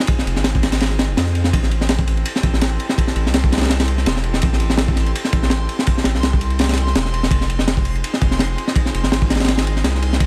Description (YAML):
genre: drum and bass, jungle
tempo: 166 BPM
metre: 4/4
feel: swing 54% on 16ths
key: unclear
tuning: A4 = 440 Hz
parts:
  - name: airy breathy pad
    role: sustained chords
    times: 0.0-10.3 s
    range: C4 to A4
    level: -32 LUFS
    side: equal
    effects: chorus
  - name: crunchy breakbeat drum kit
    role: drums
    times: 0.0-10.3 s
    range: kick drum, ride cymbal, snare drum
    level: -20 LUFS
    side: equal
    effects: none
  - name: saturated sub bass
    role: bass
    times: 0.3-10.3 s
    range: E1 to F2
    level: -22 LUFS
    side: equal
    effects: none
  - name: backwards swelling texture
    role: texture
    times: 2.7-10.3 s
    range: C6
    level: -35 LUFS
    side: equal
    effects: built-in reverb
room: small room ambience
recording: none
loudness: -18 LUFS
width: mono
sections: 0.0-10.3 A section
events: kick drops out 0.8-1.5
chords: 0.0 Fm7; 1.5 Am7; 7.3 Fm7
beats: | 0.09 0.45 0.81 1.17 | 1.53 1.89 2.25 2.62 | 2.98 3.34 3.70 4.06 | 4.42 4.78 5.15 5.51 | 5.87 6.23 6.59 6.95 | 7.31 7.68 8.04 8.40 | 8.76 9.12 9.48 9.84 | 10.21